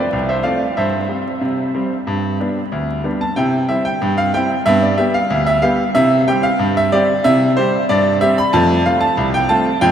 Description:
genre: ragtime piano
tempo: 93 BPM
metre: 2/4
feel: straight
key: C major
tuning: A4 = 440 Hz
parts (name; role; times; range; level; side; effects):
- bright grand piano; solo; 0.0-9.9 s; C2 to B5; -14 LUFS; equal; none
room: wet huge ambient reverb, RT60 7.5 s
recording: in a vast, echoing space, vinyl crackle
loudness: -14 LUFS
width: side -9 dB against mid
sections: 0.0-3.4 A section; 3.4-9.9 B section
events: none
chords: 0.0 F; 0.8 C/G; 2.1 G; 3.4 C; 4.7 G; 6.0 C; 8.5 F

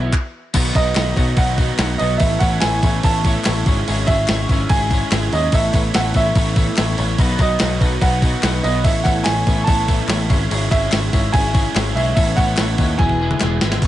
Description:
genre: indie rock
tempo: 144 BPM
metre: 4/4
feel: straight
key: A lydian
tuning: A4 = 441 Hz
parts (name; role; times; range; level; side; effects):
- clear upright piano; melody; 0.0-13.6 s; D#5 to A5; -22 LUFS; right 2 dB; slapback echo
- overdriven electric guitar; riff; 0.0-13.9 s; G#2 to F#4; -25 LUFS; right 8 dB; ensemble chorus, slapback echo
- twelve-string electric guitar; riff; 0.0-13.9 s; B2 to C#5; -25 LUFS; left 7 dB; spring reverb
- overdriven picked electric bass; bass; 0.0-13.9 s; E1 to D#2; -21 LUFS; equal; none
- crisp 8-bit digital drum machine; drums; 0.1-13.9 s; crash cymbal, handclaps, hi-hat, kick drum, snare drum, toms; -18 LUFS; equal; none
- group handclap; percussion; 0.7-13.5 s; none; -31 LUFS; left 7 dB; none
room: digital ambience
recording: nothing above 10.6 kHz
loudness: -15 LUFS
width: side -14 dB against mid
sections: 0.5-13.8 A section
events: stop 0.1-0.5; drum fill 13.0-13.8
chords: 0.0 Bsus4; 0.5 B; 2.2 Aadd9; 3.7 C#m/G#; 5.5 Aadd9; 7.2 B; 8.8 Aadd9; 10.3 C#m/G#; 12.2 Aadd9; 13.0 E

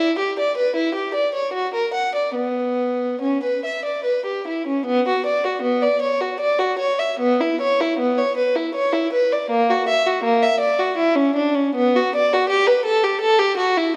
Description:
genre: classical, baroque-style suite movement for unaccompanied violin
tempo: 69-83 BPM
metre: 3/4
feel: rubato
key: B minor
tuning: A4 = 439 Hz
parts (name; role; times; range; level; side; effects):
- warm violin; solo; 0.0-14.0 s; A#3 to F#5; -20 LUFS; equal; none
room: wet recital hall reverb, RT60 1.5 s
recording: dark, warm production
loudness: -20 LUFS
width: mono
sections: 0.0-4.9 A section; 4.9-14.0 B section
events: none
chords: none

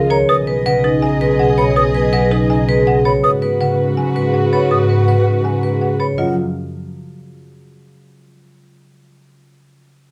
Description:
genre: classical, minimalist pattern music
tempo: 163 BPM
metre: 4/4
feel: straight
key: unclear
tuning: A4 = 440 Hz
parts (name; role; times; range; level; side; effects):
- folk marimba with hard mallets; melody; 0.0-6.3 s; A#4 to G#5; -26 LUFS; equal; none
- bright wooden-headed alto flute; second line; 0.0-6.0 s; F#4 to G#4; -25 LUFS; equal; none
- concert harp; accompaniment; 0.0-7.7 s; C#3 to B3; -21 LUFS; equal; none
- warm symphonic string section; sustained chords; 0.0-6.0 s; F#4 to D#5; -28 LUFS; equal; none
- warm symphonic double bass section; bass; 0.0-6.3 s; B1 to G#2; -22 LUFS; equal; none
- mellow hollow concert flute; arpeggios; 0.1-6.4 s; D#5 to D#6; -21 LUFS; equal; none
- vibraphone with hard mallets; arpeggios; 0.1-6.3 s; D#4 to C#5; -22 LUFS; equal; none
room: light reverb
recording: close, detailed microphones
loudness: -15 LUFS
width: mono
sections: 0.0-6.2 A section; 6.2-7.7 B section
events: none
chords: 0.3 B6; 3.2 G#m7; 6.2 D#madd9/F# (rootless)

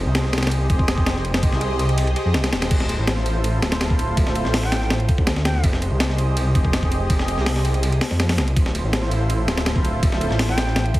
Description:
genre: drum and bass, jungle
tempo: 164 BPM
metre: 4/4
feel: straight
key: unclear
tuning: A4 = 440 Hz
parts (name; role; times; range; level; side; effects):
- lush unison pad; sustained chords; 0.0-10.9 s; E4 to Eb5; -27 LUFS; equal; chorus, phaser
- detuned saw bass; bass; 0.0-10.9 s; D1 to F2; -21 LUFS; equal; tube saturation
- breakbeat sampler-style drum kit; drums; 0.1-11.0 s; crash cymbal, hi-hat, kick drum, ride cymbal, snare drum; -21 LUFS; equal; studio reverb
- mellow jazz flute; melody; 4.6-5.7, 10.5-10.9 s; G5; -30 LUFS; equal; dub echo
room: light reverb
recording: heavily compressed radio sound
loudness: -18 LUFS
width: side -17 dB against mid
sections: 0.0-2.7 A section; 2.7-11.0 A section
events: drop 0.0-2.7, 2.7-11.0; kick drops out 2.0-2.7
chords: 0.0 Fm9; 2.7 Dm9; 5.6 Fm9; 8.6 Dm9

